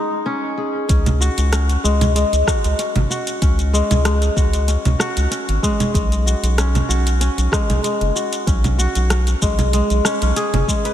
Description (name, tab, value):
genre	organic downtempo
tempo	95 BPM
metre	4/4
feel	swing 54% on 16ths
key	unclear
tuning	A4 = 440 Hz
part	kora	arpeggios	0.0-10.9 s	G#3 to B4	-21 LUFS	left 1 dB	diffuse ambient delay
part	round analog bass	bass	0.9-10.6 s	F#1 to C#2	-17 LUFS	equal	sidechain pumping
part	afro-pop drum kit	drums	0.9-10.9 s	congas, hi-hat, rim click, shaker	-22 LUFS	right 1 dB	none
part	electronic kick drum	drums	0.9-10.8 s	none	-19 LUFS	equal	none
room	light reverb, digital ambience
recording	none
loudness	-15 LUFS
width	side -11 dB against mid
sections	0.9-10.9 A section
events	break 0.0-0.9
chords	0.0 D#m7; 5.9 B5